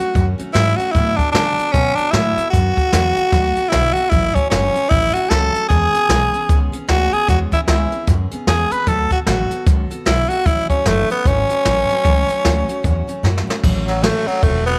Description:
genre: rockabilly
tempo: 151 BPM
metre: 4/4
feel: swing 60% on 8ths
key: A major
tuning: A4 = 441 Hz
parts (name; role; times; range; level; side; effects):
- growling tenor saxophone; melody; 0.0-14.8 s; F#3 to B4; -20 LUFS; equal; slapback echo
- picked steel-string acoustic guitar; accompaniment; 0.0-14.8 s; A2 to A4; -29 LUFS; equal; none
- upright bass; bass; 0.0-14.8 s; E1 to C#3; -22 LUFS; equal; none
- jazz brush drum kit; drums; 0.0-14.7 s; crash cymbal, hi-hat, kick drum, ride cymbal, snare drum; -22 LUFS; equal; none
room: light reverb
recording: none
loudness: -17 LUFS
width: mono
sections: 0.0-13.6 A section; 13.6-14.8 B section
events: drum fill 13.2-13.6; tenor saxophone solo 13.6-14.8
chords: 0.0 A6; 0.9 D6; 4.1 A6; 5.7 E6; 8.9 D6; 10.5 A6

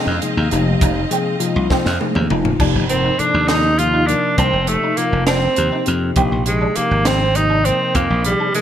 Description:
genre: electric jazz fusion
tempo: 67 BPM (dotted quarters)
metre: 6/8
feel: straight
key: unclear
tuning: A4 = 440 Hz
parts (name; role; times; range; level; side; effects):
- bell-like tine electric piano; accompaniment; 0.0-8.6 s; C3 to F5; -22 LUFS; left 4 dB; phaser
- warm studio string section; sustained chords; 0.0-2.6 s; Ab3 to F5; -27 LUFS; right 1 dB; none
- clean electric guitar; stabs; 0.0-8.6 s; C4 to Eb4; -26 LUFS; right 1 dB; ensemble chorus
- slap bass; bass; 0.1-8.3 s; F1 to F2; -19 LUFS; equal; none
- crisp fusion drum kit; drums; 0.2-8.6 s; crash cymbal, hi-hat, kick drum, snare drum, toms; -22 LUFS; right 1 dB; gated reverb
- clear tenor saxophone; melody; 2.9-8.6 s; G3+20c to F4; -18 LUFS; equal; none
- breathy trombone; second line; 2.9-8.6 s; G3 to F4; -25 LUFS; right 4 dB; ping-pong delay
room: light reverb, studio reverb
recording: bright 1980s-style digital production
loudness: -14 LUFS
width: side -10 dB against mid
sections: 0.0-2.6 A section; 2.6-8.6 B section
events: drum fill 1.7-2.6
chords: 0.0 Fm7; 2.6 F13sus4; 6.2 Bb13sus4

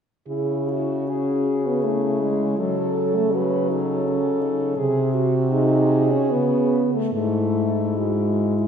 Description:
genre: classical, lyrical piece for horn quartet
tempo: 72-84 BPM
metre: 3/4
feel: rubato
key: C# minor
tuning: A4 = 440 Hz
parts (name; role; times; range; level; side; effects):
- clear French horn; melody; 0.3-8.7 s; E4 to B4; -28 LUFS; left 4 dB; none
- mellow French horn; second line; 0.3-8.7 s; C#4 to A4; -26 LUFS; right 5 dB; none
- warm French horn; bass; 0.3-8.7 s; G#2 to C#3; -24 LUFS; equal; none
- mellow French horn; accompaniment; 1.1-8.7 s; F#3 to D#4; -23 LUFS; left 1 dB; none
room: wet scoring stage reverb, RT60 1.5 s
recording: recorded in a church or concert hall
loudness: -19 LUFS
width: side -7 dB against mid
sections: 0.3-8.7 A section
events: none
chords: 0.3 C#m; 2.6 B9/C# (rootless); 4.8 G#7/B#; 6.3 C#5; 7.1 F#m9/G#

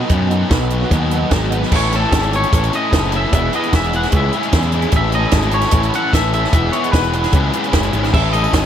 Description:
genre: indie rock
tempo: 149 BPM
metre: 4/4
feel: straight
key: unclear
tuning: A4 = 440 Hz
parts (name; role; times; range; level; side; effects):
- raw garage guitar; riff; 0.0-8.7 s; A2 to B4; -22 LUFS; right 7 dB; overdrive, ensemble chorus, tape echo
- sludgy distorted guitar; riff; 0.0-8.7 s; F#3 to A4; -21 LUFS; left 10 dB; overdrive, tape echo
- growling picked electric bass; bass; 0.0-8.7 s; E1 to F#2; -19 LUFS; equal; overdrive
- compact cocktail drum kit; drums; 0.1-8.6 s; crash cymbal, hi-hat, kick drum, snare drum; -18 LUFS; equal; tape echo
- twangy electric guitar; melody; 1.8-8.7 s; A4 to F#5; -21 LUFS; left 1 dB; wide subtle chorus, tape echo
- tambourine; percussion; 8.2-8.6 s; none; -36 LUFS; right 15 dB; none
room: light reverb, studio reverb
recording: echo-heavy mix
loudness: -13 LUFS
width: side -9 dB against mid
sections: 0.0-1.7 A section; 1.7-8.7 B section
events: none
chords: 0.0 B; 1.7 Amaj7; 3.3 E; 4.1 C#m; 4.9 Amaj7; 6.5 E; 7.3 C#m7; 8.1 Amaj7

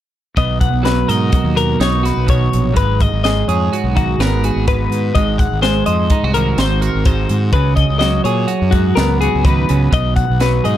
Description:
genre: math rock and midwest emo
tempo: 126 BPM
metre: 5/4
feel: straight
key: B major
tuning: A4 = 441 Hz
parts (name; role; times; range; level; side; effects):
- twelve-string electric guitar; accompaniment; 0.4-10.8 s; G#2 to B#4; -18 LUFS; right 5 dB; spring reverb
- twelve-string electric guitar; arpeggios; 0.4-10.8 s; F#4 to F#5; -20 LUFS; left 9 dB; none
- fuzz fingered electric bass; bass; 0.4-10.8 s; G#1 to A#2; -18 LUFS; equal; overdrive
- crisp fusion drum kit; drums; 0.4-10.8 s; hi-hat, kick drum, snare drum; -18 LUFS; equal; none
room: little or no reverb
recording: dark, warm production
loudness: -13 LUFS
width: side -12 dB against mid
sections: 0.4-10.8 A section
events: none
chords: 0.4 Bmaj7; 2.8 G#m7; 5.1 G#7; 7.5 C#7sus4; 9.9 B

